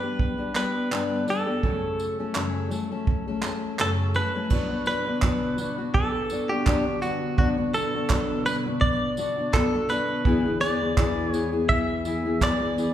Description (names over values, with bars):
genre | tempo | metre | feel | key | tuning
acoustic pop | 84 BPM | 4/4 | swing 55% on 16ths | B minor | A4 = 439 Hz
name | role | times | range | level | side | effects
direct-recorded clean electric guitar | melody | 0.0-12.9 s | F#4 to E5 | -28 LUFS | right 1 dB | none
fingerpicked steel-string acoustic guitar | accompaniment | 0.0-12.9 s | E2 to A4 | -26 LUFS | left 3 dB | none
soft brush drum kit | drums | 0.2-12.9 s | crash cymbal, handclaps, kick drum, tambourine | -26 LUFS | right 2 dB | none
glassy FM pad | sustained chords | 4.8-12.9 s | E2 to D5 | -34 LUFS | right 3 dB | ensemble chorus, built-in reverb
room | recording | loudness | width
wet recital hall reverb, RT60 1.6 s | recorded in a church or concert hall | -22 LUFS | side -11 dB against mid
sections
0.0-4.5 A section; 4.5-12.9 B section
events
none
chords
0.0 G; 1.6 F#m; 4.5 Bm; 10.3 E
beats
0.19 0.91 | 1.63 2.35 3.07 3.79 | 4.51 5.22 5.94 6.66 | 7.38 8.10 8.82 9.54 | 10.25 10.97 11.69 12.41